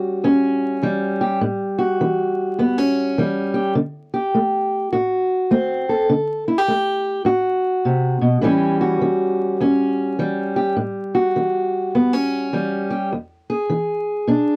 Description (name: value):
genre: blues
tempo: 103 BPM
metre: 4/4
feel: swing 63% on 8ths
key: A mixolydian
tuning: A4 = 440 Hz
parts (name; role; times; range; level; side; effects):
- fingerpicked steel-string acoustic guitar; solo; 0.0-14.6 s; E2 to A4; -20 LUFS; equal; none
room: little or no reverb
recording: dry, close 1970s-style studio recording, vinyl crackle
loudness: -20 LUFS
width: mono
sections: 0.0-14.6 A section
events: none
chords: 0.0 A7; 3.8 D7; 8.4 A7; 13.1 E7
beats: 0.24 0.83 | 1.41 2.00 2.58 3.17 | 3.75 4.34 4.92 5.51 | 6.09 6.68 7.26 7.85 | 8.43 9.02 9.60 10.19 | 10.77 11.35 11.94 12.52 | 13.11 13.69 14.27